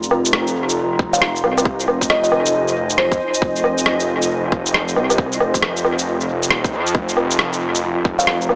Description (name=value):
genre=future garage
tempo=136 BPM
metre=4/4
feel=swing 63% on 16ths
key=F dorian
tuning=A4 = 440 Hz
part: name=granular cloud pad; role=sustained chords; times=0.0-8.6 s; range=F4 to Bb5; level=-24 LUFS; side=equal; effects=built-in reverb, sidechain pumping
part: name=swelling detuned saw bass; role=bass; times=0.0-8.6 s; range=Eb1 to F2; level=-21 LUFS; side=equal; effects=tube saturation, sidechain pumping
part: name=electronic shaker, woodblock and rim click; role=drums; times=0.0-8.6 s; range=none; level=-18 LUFS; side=equal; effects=small room ambience, dub echo
part: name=electronic kick drum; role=drums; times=1.0-8.2 s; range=none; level=-19 LUFS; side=equal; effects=overdrive, small room ambience
part: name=buzzing kalimba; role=melody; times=1.1-3.6, 8.2-8.4 s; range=C5 to F5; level=-20 LUFS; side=equal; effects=vintage 12-bit sampler grit, tape echo
room=light reverb, digital ambience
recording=echo-heavy mix, small speaker sound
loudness=-15 LUFS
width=side -32 dB against mid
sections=0.0-8.6 A section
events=none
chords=0.0 Fm7; 6.9 Gm/F